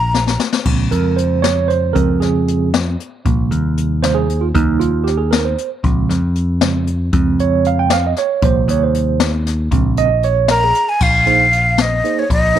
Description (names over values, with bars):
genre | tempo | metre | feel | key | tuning
progressive instrumental, band music in an uneven meter | 232 BPM (eighths) | 5/8 | straight | Bb dorian | A4 = 440 Hz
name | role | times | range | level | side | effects
breathy jazz flute | melody | 0.0-0.4, 10.5-12.6 s | Db5 to Bb5 | -14 LUFS | left 1 dB | none
picked electric bass | bass | 0.0-12.6 s | Bb1 to F2 | -17 LUFS | left 1 dB | none
jazz brush drum kit | drums | 0.1-12.6 s | crash cymbal, hi-hat, kick drum, snare drum | -19 LUFS | left 4 dB | none
tine electric piano | accompaniment | 0.7-12.6 s | C3 to G5 | -18 LUFS | right 10 dB | medium tremolo
room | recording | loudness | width
light reverb, small room ambience | 1960s-style stereo | -13 LUFS | side -10 dB against mid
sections
0.7-11.0 A section; 11.0-12.6 B section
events
drum fill 0.1-0.7; tine electric piano solo 0.7-11.0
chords
0.0 N.C.; 0.7 Bbm7; 3.3 Bb13sus4; 5.8 Bbm7 (rootless); 8.4 Eb6/Bb; 9.7 Bbm7; 11.0 Ebsus4/Bb